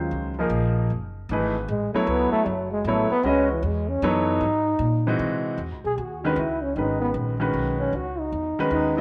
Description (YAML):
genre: modal jazz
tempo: 154 BPM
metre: 3/4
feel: swing 64% on 8ths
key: C# dorian from 5.6 s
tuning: A4 = 440 Hz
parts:
  - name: breathy trombone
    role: second line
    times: 0.0-9.0 s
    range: Fb3 to G#4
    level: -27 LUFS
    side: equal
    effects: none
  - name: warm grand piano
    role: accompaniment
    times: 0.0-9.0 s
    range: Eb3 to Eb5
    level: -27 LUFS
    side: equal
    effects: none
  - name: upright bass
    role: bass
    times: 0.0-9.0 s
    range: Gb1 to C3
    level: -31 LUFS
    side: equal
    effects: none
room: wet spring reverb, RT60 1.2 s, studio reverb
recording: none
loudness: -24 LUFS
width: mono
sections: 0.0-5.6 A section; 5.6-9.0 A section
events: trombone solo 0.0-9.0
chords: 0.0 Ebm9; 0.9 Gbm9; 4.4 Ab7b13; 5.6 C#9sus4